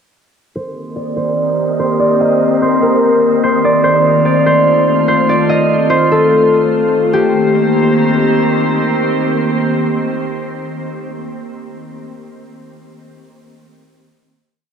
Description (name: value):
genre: hip hop, atmospheric cloud-rap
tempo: 146 BPM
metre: 4/4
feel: half-time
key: C dorian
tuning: A4 = 440 Hz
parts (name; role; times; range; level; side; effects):
- concert harp; melody; 0.6-9.5 s; G4 to Eb5; -14 LUFS; equal; low-pass filter, digital delay
- glassy FM pad; sustained chords; 0.8-10.9 s; Eb3 to C5; -15 LUFS; left 1 dB; ensemble chorus, built-in reverb, low-pass filter
- wind-like tuned noise texture; texture; 1.2-5.5 s; C4 to F5; -24 LUFS; right 2 dB; built-in reverb
room: moderate huge ambient reverb, RT60 8.2 s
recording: none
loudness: -10 LUFS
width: side -7 dB against mid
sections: 0.6-7.1 breakdown; 7.1-10.4 final chord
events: filter sweep 0.6-7.1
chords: 0.6 Cm7; 3.8 F7; 7.1 Cm7